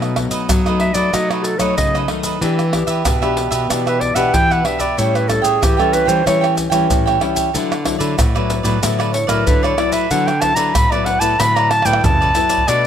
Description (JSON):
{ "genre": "samba and choro", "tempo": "94 BPM", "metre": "4/4", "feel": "straight", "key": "D major", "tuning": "A4 = 440 Hz", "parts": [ { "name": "cavaquinho", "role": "accompaniment", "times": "0.0-12.9 s", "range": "D4 to G5", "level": "-22 LUFS", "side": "right 9 dB", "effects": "none" }, { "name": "nylon-string guitar", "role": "accompaniment", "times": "0.0-12.9 s", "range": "F#2 to G4", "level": "-22 LUFS", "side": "left 7 dB", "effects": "none" }, { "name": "nylon-string guitar", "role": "bass", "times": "0.0-12.9 s", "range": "A2 to F#3", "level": "-21 LUFS", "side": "equal", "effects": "none" }, { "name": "maracas, pandeiro, tamborim and surdo", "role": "percussion", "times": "0.0-12.9 s", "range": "none", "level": "-20 LUFS", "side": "right 1 dB", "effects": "none" }, { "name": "warm clarinet", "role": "melody", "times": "0.8-12.9 s", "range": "F#4 to B5", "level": "-17 LUFS", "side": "equal", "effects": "none" } ], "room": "light reverb", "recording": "none", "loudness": "-14 LUFS", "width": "side -9 dB against mid", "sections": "0.0-12.7 A section", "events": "clarinet solo 0.0-12.7; drum fill 11.7-12.7", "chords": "0.0 B7; 2.4 Em7; 5.0 A7; 7.5 D69", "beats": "0.50 1.14 1.78 | 2.42 3.06 3.70 4.34 | 4.98 5.62 6.26 6.91 | 7.55 8.19 8.83 9.47 | 10.12 10.76 11.40 12.04 | 12.68" }